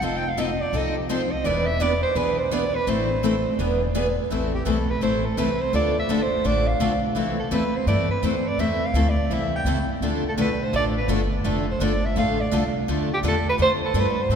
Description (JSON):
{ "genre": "acoustic string swing (jazz manouche)", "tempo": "168 BPM", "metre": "4/4", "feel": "swing 62% on 8ths", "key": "A minor", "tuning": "A4 = 439 Hz", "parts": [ { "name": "mellow soprano saxophone", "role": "melody", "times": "0.0-14.4 s", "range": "G4 to G5", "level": "-25 LUFS", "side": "right 2 dB", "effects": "none" }, { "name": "picked steel-string acoustic guitar", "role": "accompaniment", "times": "0.0-14.4 s", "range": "D3 to A4", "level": "-26 LUFS", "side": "left 3 dB", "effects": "none" }, { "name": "picked steel-string acoustic guitar", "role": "accompaniment", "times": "0.0-14.4 s", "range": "D3 to B4", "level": "-29 LUFS", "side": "right 4 dB", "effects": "none" }, { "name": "upright bass", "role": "bass", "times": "0.0-14.4 s", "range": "E1 to A2", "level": "-27 LUFS", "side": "equal", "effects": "none" } ], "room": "wet cathedral reverb, RT60 5.0 s", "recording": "recorded in a church or concert hall", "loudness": "-20 LUFS", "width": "side -7 dB against mid", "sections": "0.0-4.3 A section; 4.3-14.4 B section", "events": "soprano saxophone solo 0.0-4.3", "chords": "0.0 F7; 1.4 E7; 2.9 Am; 3.6 E7; 4.3 Am; 5.7 Dm; 7.2 Am; 10.0 Dm", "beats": "| 0.02 0.38 0.73 1.09 | 1.45 1.80 2.16 2.52 | 2.87 3.23 3.59 3.94 | 4.30 4.66 5.01 5.37 | 5.73 6.09 6.44 6.80 | 7.16 7.51 7.87 8.23 | 8.59 8.94 9.30 9.66 | 10.01 10.37 10.73 11.09 | 11.44 11.80 12.16 12.51 | 12.87 13.23 13.59 13.94 | 14.30" }